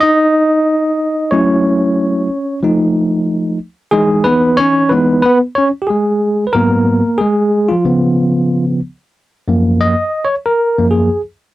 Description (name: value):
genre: hip hop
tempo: 92 BPM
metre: 4/4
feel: swing 58% on 16ths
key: F# major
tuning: A4 = 440 Hz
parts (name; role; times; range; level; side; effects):
- bell-like tine electric piano; solo; 0.0-11.2 s; F#2 to D#5; -11 LUFS; equal; fast stereo tremolo, cassette tape
room: moderate booth ambience, RT60 0.2 s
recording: home recording on cassette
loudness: -11 LUFS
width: side -16 dB against mid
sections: 0.0-9.2 A section; 9.2-11.5 B section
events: tine electric piano solo 0.0-9.2, 9.2-11.5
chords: 0.0 N.C.; 1.3 F#m7; 2.6 F7; 3.9 Emaj7; 6.5 G#m7; 7.9 C#7; 9.2 F#maj7